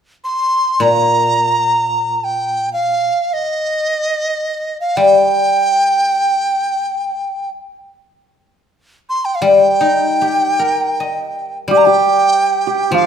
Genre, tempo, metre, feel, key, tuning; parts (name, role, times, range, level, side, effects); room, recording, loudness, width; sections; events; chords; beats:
chinese traditional, Chinese chamber ensemble; free time; G jue mode; A4 = 441 Hz
dizi; melody; 0.2-13.1 s; Eb5 to C6; -15 LUFS; right 1 dB
guzheng; accompaniment; 0.8-13.1 s; Bb2 to Eb5; -15 LUFS; left 3 dB
hammered dulcimer; second line; 11.7-13.1 s; F4 to G4; -17 LUFS; right 10 dB
moderate recital hall reverb, RT60 1.5 s; -13 LUFS; side -8 dB against mid
0.0-11.7 A section; 11.7-13.1 B section
free time